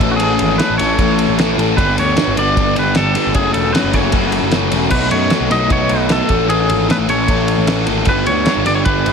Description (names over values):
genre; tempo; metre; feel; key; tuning
indie rock; 152 BPM; 4/4; straight; unclear; A4 = 445 Hz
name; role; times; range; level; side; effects
twangy electric guitar; melody; 0.0-9.1 s; F#4 to D#5; -19 LUFS; equal; tremolo, tape echo
crunchy overdriven guitar; riff; 0.0-9.1 s; F#2 to A4; -16 LUFS; left 1 dB; none
fuzz picked electric bass; bass; 0.0-9.1 s; E1 to F#2; -20 LUFS; equal; overdrive
cloth-damped thuddy drum kit; drums; 0.0-9.1 s; crash cymbal, kick drum, ride cymbal, snare drum; -20 LUFS; equal; none
room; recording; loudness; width
light reverb, small room ambience; none; -12 LUFS; side -6 dB against mid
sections
0.0-9.1 A section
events
none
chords
0.0 Amaj7; 1.8 G; 3.4 F#m7; 4.9 B7; 6.3 Amaj7; 8.1 G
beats
| 0.21 0.60 0.99 1.39 | 1.78 2.18 2.57 2.96 | 3.36 3.75 4.15 4.54 | 4.93 5.33 5.72 6.11 | 6.51 6.90 7.29 7.68 | 8.08 8.47 8.86